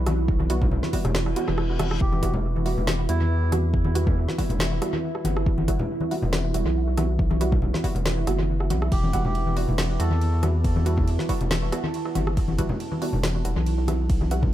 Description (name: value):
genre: deep dubstep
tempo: 139 BPM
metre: 4/4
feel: swing 54% on 16ths, half-time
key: E minor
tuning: A4 = 441 Hz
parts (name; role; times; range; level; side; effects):
- deep dark ambient pad; sustained chords; 0.0-14.5 s; E4 to B5; -32 LUFS; right 4 dB; chorus, built-in reverb
- saturated sub bass; bass; 0.0-14.5 s; E1 to E2; -24 LUFS; equal; none
- filtered dub chord stab; stabs; 0.1-14.4 s; G3 to F#4; -32 LUFS; right 3 dB; lush chorus, dub echo
- deep house drum kit; drums; 0.1-14.4 s; hi-hat, ride cymbal, rim click, snare drum; -32 LUFS; equal; studio ambience, dub echo
- congas; percussion; 0.1-14.5 s; none; -28 LUFS; left 2 dB; dub echo
- electronic kick drum; drums; 0.3-14.5 s; none; -24 LUFS; equal; studio ambience
- reverse cymbal; sound effects; 1.3-2.0 s; none; -38 LUFS; left 5 dB; none
- melodica; melody; 2.0-3.5, 8.9-10.4 s; E4 to A4; -36 LUFS; right 1 dB; dub echo
room: little or no reverb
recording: echo-heavy mix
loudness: -21 LUFS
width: side -13 dB against mid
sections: 0.0-14.5 A section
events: drum fill 1.1-2.0; reverse cymbal 1.3-2.0; kick drops out 1.6-2.0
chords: 0.0 Emadd9